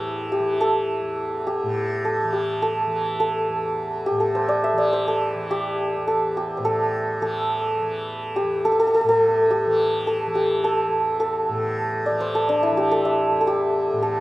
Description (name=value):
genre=indian classical, Hindustani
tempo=105 BPM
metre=7/4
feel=straight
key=E raga malkauns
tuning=A4 = 440 Hz
part: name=santur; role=melody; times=0.0-14.2 s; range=D4 to E5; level=-20 LUFS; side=equal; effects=slapback echo
part: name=tanpura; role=drone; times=0.0-14.2 s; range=E2 to E3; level=-31 LUFS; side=equal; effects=none
room=little or no reverb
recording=recorded outdoors, with no room sound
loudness=-20 LUFS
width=side -17 dB against mid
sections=0.0-14.2 A section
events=none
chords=none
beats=0.32 0.90 1.47 2.05 2.62 | 3.20 3.77 4.35 4.92 5.50 6.07 6.64 | 7.22 7.79 8.36 8.93 9.50 10.07 10.64 | 11.21 11.78 12.35 12.92 13.48 14.05